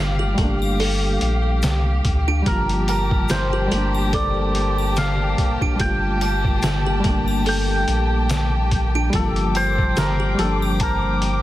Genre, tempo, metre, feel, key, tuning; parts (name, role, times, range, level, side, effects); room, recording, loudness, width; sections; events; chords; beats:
trip hop; 72 BPM; 4/4; swing 56% on 16ths; G minor; A4 = 440 Hz
santur; melody; 0.0-11.4 s; A4 to G5; -26 LUFS; equal; tape echo
reed electric piano; accompaniment; 0.0-11.4 s; F3 to F4; -26 LUFS; left 1 dB; tremolo
muted studio violin section; sustained chords; 0.0-11.4 s; G4 to D6; -27 LUFS; left 1 dB; vintage 12-bit sampler grit
music box; arpeggios; 0.0-11.4 s; D4 to A5; -30 LUFS; right 1 dB; digital delay
warm sub bass; bass; 0.0-11.4 s; G1 to D2; -22 LUFS; equal
trip hop sampler-style drum kit; drums; 0.4-11.4 s; hi-hat, kick drum, snare drum; -23 LUFS; equal
triangle and tube shaker; percussion; 0.6-10.8 s; -37 LUFS; left 6 dB
bowed-like drone; texture; 4.4-11.4 s; Bb3; -34 LUFS; equal
small room reverb; dense, heavily limited modern master, vinyl crackle; -18 LUFS; side -15 dB against mid
0.0-11.4 A section
0.0 Gm9
0.80 1.63 | 2.47 3.30 4.13 4.97 | 5.80 6.63 7.47 8.30 | 9.13 9.97 10.80